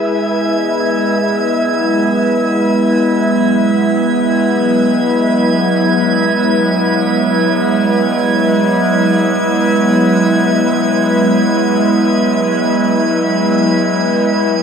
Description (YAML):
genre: ambient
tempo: free time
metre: none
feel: none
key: unclear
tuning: A4 = 436 Hz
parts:
  - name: warbly tape-like pad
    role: sustained chords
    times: 0.0-14.6 s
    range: G#3 to E5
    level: -12 LUFS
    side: equal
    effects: chorus, built-in reverb
  - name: concert harp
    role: arpeggios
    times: 0.0-2.6 s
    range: E5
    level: -32 LUFS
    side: left 1 dB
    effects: tape echo
  - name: organ-like drone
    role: drone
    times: 2.0-14.6 s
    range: F#3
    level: -21 LUFS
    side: left 1 dB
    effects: ensemble chorus, built-in reverb
  - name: drifting glass-harmonics texture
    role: texture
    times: 0.0-14.6 s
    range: G#6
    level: -22 LUFS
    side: right 4 dB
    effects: chorus, built-in reverb
room: wet shimmer reverb, RT60 8.5 s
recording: none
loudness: -11 LUFS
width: side -6 dB against mid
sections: 0.0-14.6 A section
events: none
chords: 0.0 E